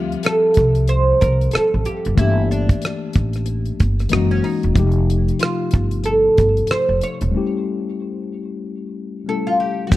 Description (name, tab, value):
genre	R&B, neo-soul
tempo	93 BPM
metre	4/4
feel	swing 58% on 16ths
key	unclear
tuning	A4 = 439 Hz
part	oud	melody	0.0-10.0 s	C#4 to C#5	-19 LUFS	right 1 dB	none
part	tine electric piano	accompaniment	0.0-10.0 s	C3 to E5	-24 LUFS	left 5 dB	none
part	upright bass	bass	0.0-10.0 s	Eb1 to D2	-19 LUFS	right 1 dB	none
part	damped 70s drum kit	drums	0.1-10.0 s	hi-hat, kick drum, rim click	-18 LUFS	equal	none
part	maracas	percussion	9.9-10.0 s	none	-32 LUFS	left 2 dB	none
room	small room ambience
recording	dry, close 1970s-style studio recording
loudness	-15 LUFS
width	side -16 dB against mid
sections	0.0-10.0 A section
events	break 7.3-9.9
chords	0.0 Dm11 (rootless); 2.2 Gm69; 4.1 F#9; 4.8 F9; 7.3 A7